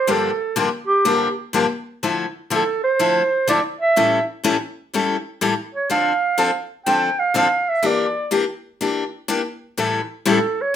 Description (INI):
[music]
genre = jazz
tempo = 124 BPM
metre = 4/4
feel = swing 65% on 8ths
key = D minor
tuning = A4 = 445 Hz
[part]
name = breathy clarinet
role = melody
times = 0.0-10.8 s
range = G4 to G5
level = -18 LUFS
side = right 3 dB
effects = none
[part]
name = picked steel-string acoustic guitar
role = accompaniment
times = 0.1-10.4 s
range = G2 to A4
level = -19 LUFS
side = left 4 dB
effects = none
[sound]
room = wet studio reverb, RT60 0.6 s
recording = rough home demo mix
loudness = -18 LUFS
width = side -10 dB against mid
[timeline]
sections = 0.0-10.8 A section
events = none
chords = 0.1 Gm7; 2.0 Dmadd9; 4.0 A7; 5.9 Dm7; 7.8 Em7b5; 9.8 A7